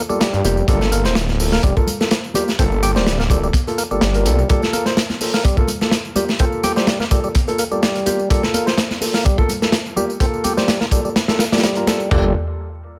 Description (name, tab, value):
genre	breakbeat, breaks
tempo	126 BPM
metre	4/4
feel	swing 54% on 16ths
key	G minor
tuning	A4 = 439 Hz
part	percussive tonewheel organ	riff	0.0-12.3 s	G3 to G4	-26 LUFS	equal	overdrive, low-pass filter, dub echo
part	downlifter	sound effects	0.0-0.7 s	none	barely audible	none	none
part	dark baby grand piano	stabs	0.1-12.3 s	Bb3 to C5	-25 LUFS	equal	low-pass filter, dub echo
part	tambourine	drums	0.1-12.1 s	none	-34 LUFS	equal	overdrive
part	congas	percussion	0.1-12.1 s	none	-32 LUFS	equal	none
part	crunchy breakbeat drum kit	drums	0.2-12.2 s	crash cymbal, hi-hat, kick drum, snare drum, toms	-20 LUFS	equal	none
part	detuned saw bass	bass	0.3-4.4, 12.1-12.3 s	D1 to G2	-21 LUFS	equal	none
room	small room ambience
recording	none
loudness	-18 LUFS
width	mono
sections	0.0-12.1 A section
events	filter sweep on tonewheel organ 0.0-12.1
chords	0.0 Gm9